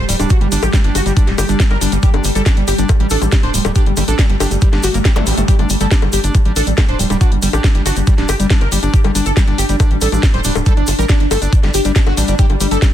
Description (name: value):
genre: psychedelic trance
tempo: 139 BPM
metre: 4/4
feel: straight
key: unclear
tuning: A4 = 440 Hz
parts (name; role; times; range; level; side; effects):
- wide unison lead; melody; 0.0-12.9 s; G3 to C5; -21 LUFS; equal; phaser, sidechain pumping, ping-pong delay
- swarming drone; sustained chords; 0.0-12.9 s; G3 to G4; -24 LUFS; equal; built-in reverb, sidechain pumping
- tight sequencer bass; bass; 0.0-12.8 s; D1 to A1; -17 LUFS; equal; none
- overdriven acid bass; riff; 0.1-12.8 s; G3 to G4; -24 LUFS; moving between left 6 dB and right 6 dB; auto-pan, sidechain pumping, ping-pong delay
- drum and bass drum kit; drums; 0.1-12.9 s; bongos, hi-hat, snare drum; -21 LUFS; left 3 dB; none
- tube shaker; percussion; 0.1-12.9 s; none; -26 LUFS; right 2 dB; none
- electronic kick drum; drums; 0.3-12.9 s; none; -12 LUFS; equal; none
- zap; sound effects; 5.2-5.3 s; none; -27 LUFS; equal; none
room: digital ambience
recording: dense, heavily limited modern master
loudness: -11 LUFS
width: side -11 dB against mid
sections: 0.0-12.9 A section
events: none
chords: 0.0 G5